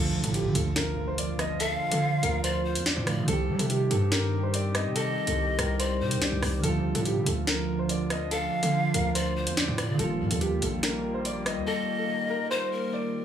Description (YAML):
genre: hip hop, drill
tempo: 143 BPM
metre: 4/4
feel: half-time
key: D phrygian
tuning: A4 = 439 Hz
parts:
  - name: dark concert grand piano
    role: melody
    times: 0.0-13.2 s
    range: G4 to Eb5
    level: -32 LUFS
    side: equal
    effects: digital delay
  - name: soft electric-piano-like synth keys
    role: accompaniment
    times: 0.0-13.2 s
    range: D3 to G4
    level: -33 LUFS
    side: right 3 dB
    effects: chorus
  - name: warbly tape-like pad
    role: sustained chords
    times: 0.5-13.2 s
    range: D3 to G4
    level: -34 LUFS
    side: equal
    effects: chorus, built-in reverb
  - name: hard-hitting 808-style bass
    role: bass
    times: 0.0-11.7 s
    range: Eb1 to G3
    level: -30 LUFS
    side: equal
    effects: none
  - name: impact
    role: sound effects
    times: 0.0-1.6 s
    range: none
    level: -37 LUFS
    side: equal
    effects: none
  - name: drill drum kit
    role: drums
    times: 0.2-11.6 s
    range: hi-hat, rim click, snare drum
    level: -30 LUFS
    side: equal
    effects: none
  - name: breathy pan flute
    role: second line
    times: 1.6-13.2 s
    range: Bb4 to F5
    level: -32 LUFS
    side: left 2 dB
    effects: digital delay
room: light reverb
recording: studio reverb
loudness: -25 LUFS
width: side -9 dB against mid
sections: 0.0-13.2 A section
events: impact 0.0-1.6; drums muted 11.7-13.2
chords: 0.0 Dm; 3.3 Cm; 6.6 Dm; 10.0 Ebadd9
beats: 0.34 0.76 1.18 | 1.60 2.02 2.44 2.86 | 3.28 3.70 4.12 4.54 | 4.96 5.38 5.80 6.21 | 6.63 7.05 7.47 7.89 | 8.31 8.73 9.15 9.57 | 9.99 10.41 10.83 11.25 | 11.67 12.09 12.51 12.93